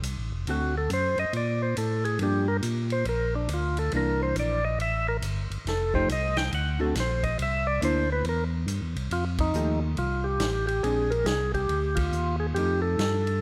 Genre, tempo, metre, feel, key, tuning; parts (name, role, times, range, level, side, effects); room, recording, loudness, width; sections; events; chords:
soul jazz organ trio; 139 BPM; 4/4; swing 65% on 8ths; F mixolydian; A4 = 442 Hz
tonewheel organ; bass; 0.0-13.4 s; F1 to Bb2; -31 LUFS; equal; overdrive, chorus vibrato, slow rotary speaker
vintage drum kit; drums; 0.0-13.3 s; hi-hat, kick drum, ride cymbal, snare drum; -38 LUFS; equal
percussive tonewheel organ; melody; 0.5-13.4 s; D4 to G5; -30 LUFS; equal; slow rotary speaker
archtop guitar, miked and amplified; accompaniment; 0.5-13.2 s; D3 to G4; -34 LUFS; equal
light reverb; -27 LUFS; mono
0.0-9.1 A section; 9.1-13.4 B section
tonewheel organ solo 0.0-9.1; band accent 9.3, 11.9
0.5 D7; 2.2 Gm7; 3.9 C9; 5.7 F9; 6.5 D7; 7.4 C9; 9.1 F9; 10.8 Bb9; 12.6 F9